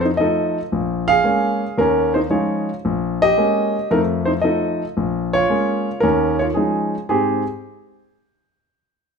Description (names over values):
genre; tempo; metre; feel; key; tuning
solo jazz; 113 BPM; 4/4; swing 68% on 8ths; Ab major; A4 = 440 Hz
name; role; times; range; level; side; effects
warm grand piano; solo; 0.0-7.4 s; Bb1 to F5; -17 LUFS; equal; none
room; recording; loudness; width
moderate large studio reverb, RT60 1.2 s; none; -17 LUFS; side -5 dB against mid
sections
0.0-7.1 A section; 7.1-9.2 B section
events
none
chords
0.0 F7; 0.7 Bbm7; 1.8 Eb9sus4; 2.8 Bbm7; 3.9 F7; 5.0 Bbm7; 6.0 Eb9sus4; 7.1 Abmaj7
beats
0.19 | 0.72 1.25 1.78 2.31 | 2.84 3.37 3.90 4.43 | 4.96 5.49 6.03 6.56 | 7.09